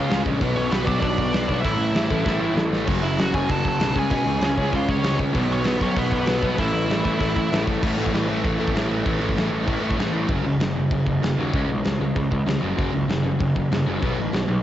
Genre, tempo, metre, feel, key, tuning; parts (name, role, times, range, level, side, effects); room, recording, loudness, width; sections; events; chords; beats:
punk rock; 194 BPM; 4/4; straight; A4 = 440 Hz
nasal lead guitar with a parked wah; melody; 0.0-7.6 s; B3 to A5; -27 LUFS; right 2 dB; overdrive
cranked stack guitar; riff; 0.0-14.6 s; F#2 to C#4; -29 LUFS; right 8 dB; overdrive
sludgy distorted guitar; riff; 0.0-14.6 s; F#2 to C#4; -25 LUFS; left 4 dB; overdrive
sludgy distorted guitar; riff; 0.0-10.3 s; F#2 to C#4; -30 LUFS; right 2 dB
fuzz picked electric bass; bass; 0.0-14.6 s; F#1 to B2; -27 LUFS; equal; overdrive
big rock drum kit; drums; 0.1-14.4 s; crash cymbal, hi-hat, kick drum, snare drum; -26 LUFS; equal; cassette tape
small room ambience; home recording on cassette, nothing above 7.8 kHz; -20 LUFS; side -12 dB against mid
0.0-7.8 A section; 7.8-10.3 B section; 10.3-14.6 C section
drum fill 2.3-2.9
0.4 Bm; 1.6 A5; 2.9 F#m; 4.0 C#5; 5.3 B5; 6.6 A5; 10.3 F#5; 11.5 C#5; 12.6 F#5; 14.0 B5
0.09 | 0.40 0.71 1.02 1.33 | 1.64 1.95 2.26 2.57 | 2.88 3.19 3.50 3.80 | 4.11 4.42 4.73 5.04 | 5.35 5.66 5.96 6.27 | 6.58 6.89 7.20 7.51 | 7.82 8.13 8.44 8.74 | 9.05 9.36 9.67 9.98 | 10.29 10.60 10.91 11.22 | 11.53 11.84 12.15 12.46 | 12.77 13.08 13.39 13.70 | 14.01 14.32